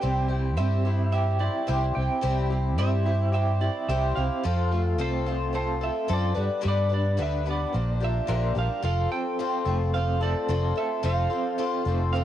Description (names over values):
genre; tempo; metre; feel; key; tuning
folk rock and heartland rock; 109 BPM; 4/4; straight; unclear; A4 = 440 Hz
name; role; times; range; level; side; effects
lightly driven lead guitar; melody; 0.0-12.2 s; C5 to G5; -32 LUFS; right 8 dB; cassette tape, plate reverb
picked twelve-string acoustic guitar; accompaniment; 0.0-12.2 s; G2 to B4; -30 LUFS; left 8 dB; cassette tape, plate reverb
electric guitar through a small old amp; riff; 0.0-12.2 s; Bb2 to Bb4; -31 LUFS; right 2 dB; tremolo, cassette tape
fingered electric bass; bass; 0.0-12.2 s; F1 to G2; -25 LUFS; equal; none
room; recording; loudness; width
moderate booth ambience, RT60 0.2 s; home recording on cassette; -23 LUFS; side -12 dB against mid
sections
0.0-8.8 A section; 8.8-12.2 B section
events
none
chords
0.0 C; 4.4 F; 6.4 G; 7.7 Bb6; 8.8 F